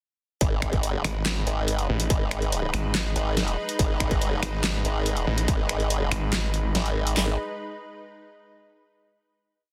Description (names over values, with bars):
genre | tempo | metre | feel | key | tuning
heavy wobble dubstep | 142 BPM | 4/4 | half-time | G# minor | A4 = 439 Hz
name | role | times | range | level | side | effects
lush unison pad | sustained chords | 0.4-7.4 s | G#3 to B4 | -36 LUFS | equal | chorus, sidechain pumping
formant-sweep wobble bass | bass | 0.4-7.4 s | G#1 | -28 LUFS | equal | chorus, overdrive
dubstep drum kit | drums | 0.4-7.3 s | handclaps, kick drum, snare drum | -28 LUFS | equal | distortion
dubstep drum kit | drums | 0.4-7.2 s | finger snaps, handclaps, hi-hat, snare drum | -31 LUFS | equal | soft clipping on snare
snarling distorted saw bass | bass | 1.0-6.7 s | G#1 to A1 | -29 LUFS | equal | distortion, overdrive
room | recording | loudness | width
light reverb, digital ambience | dense, heavily limited modern master | -25 LUFS | mono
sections
0.4-7.2 drop; 7.2-8.9 final chord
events
drop 0.4-7.2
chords
0.4 G#m